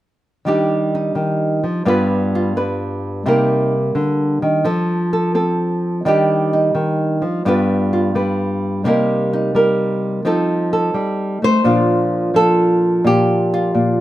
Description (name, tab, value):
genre	solo jazz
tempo	86 BPM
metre	4/4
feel	swing 68% on 8ths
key	Bb major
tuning	A4 = 441 Hz
part	nylon-string guitar	solo	0.5-14.0 s	G2 to C5	-15 LUFS	equal	none
room	moderate studio reverb, RT60 0.7 s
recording	minimal, uncompressed stereo recording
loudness	-15 LUFS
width	side -14 dB against mid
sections	0.4-11.6 A section; 11.6-14.0 B section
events	none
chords	0.4 Ebmaj7; 1.8 G7; 3.2 Cm7; 4.6 F; 6.0 Ebmaj7; 7.4 G7; 8.8 Cm7; 10.2 F7; 11.6 Bbmaj9